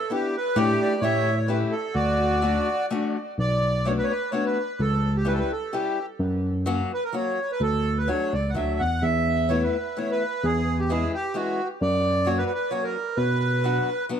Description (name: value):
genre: musette waltz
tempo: 129 BPM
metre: 3/4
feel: rubato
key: D major, B minor from 3.4 s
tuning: A4 = 440 Hz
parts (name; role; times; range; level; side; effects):
- accordion; melody; 0.0-14.1 s; F#4 to F#5; -25 LUFS; right 1 dB; tape echo
- fingerpicked acoustic archtop guitar; accompaniment; 0.1-14.2 s; E3 to G4; -28 LUFS; left 4 dB; none
- overdriven tine electric piano; bass; 0.6-13.8 s; B1 to B2; -24 LUFS; equal; none
room: moderate small room reverb, RT60 0.5 s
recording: none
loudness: -22 LUFS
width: side -8 dB against mid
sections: 0.0-3.4 A section; 3.4-14.2 B section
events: none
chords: 0.0 Em7; 0.6 A7sus4; 1.0 A7; 2.0 Dmaj7; 3.4 Bm7; 4.8 C#dim; 6.2 F#; 7.6 D; 9.0 Esus4; 10.4 C#m/E; 11.8 F#; 13.2 Bm